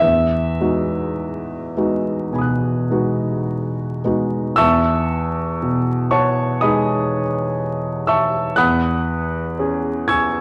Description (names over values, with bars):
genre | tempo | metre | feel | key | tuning
classical, impressionist solo piano | 51-63 BPM | 4/4 | rubato | E major | A4 = 440 Hz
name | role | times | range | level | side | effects
clear grand piano | solo | 0.0-10.4 s | E2 to G#6 | -19 LUFS | equal | none
room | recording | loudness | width
wet recital hall reverb, RT60 1.5 s | worn, warbling old tape, cassette tape, vinyl crackle, warbly pitch drift | -20 LUFS | mono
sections
0.0-4.6 A section; 4.6-10.4 A section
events
none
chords
0.0 Emaj9; 4.6 Emaj7; 8.6 C#m7/E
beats
| 0.03 1.20 2.33 3.47 | 4.58 5.62 6.61 7.60 | 8.58 9.59